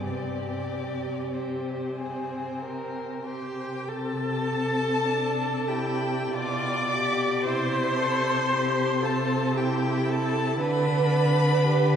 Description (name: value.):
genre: classical, slow romantic movement for string quartet.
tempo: 44-58 BPM.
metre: 3/4.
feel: rubato.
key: C major from 3.9 s.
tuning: A4 = 440 Hz.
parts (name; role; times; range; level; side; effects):
rich violin; melody; 0.0-12.0 s; C5 to D6; -32 LUFS; left 4 dB; none.
rich violin; second line; 0.0-12.0 s; C4 to C5; -32 LUFS; left 2 dB; none.
rich viola; accompaniment; 0.0-12.0 s; C4 to D5; -28 LUFS; right 2 dB; none.
rich cello; bass; 0.0-12.0 s; B2 to D3; -28 LUFS; equal; none.
room: wet cathedral reverb, RT60 5.3 s.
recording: heard from further back in the room, nothing above 10.6 kHz.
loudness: -24 LUFS.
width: side -8 dB against mid.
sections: 0.0-3.9 A section; 3.9-12.0 B section.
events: none.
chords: 0.0 C5; 3.9 C; 6.3 G7/B; 7.5 C; 10.6 N.C..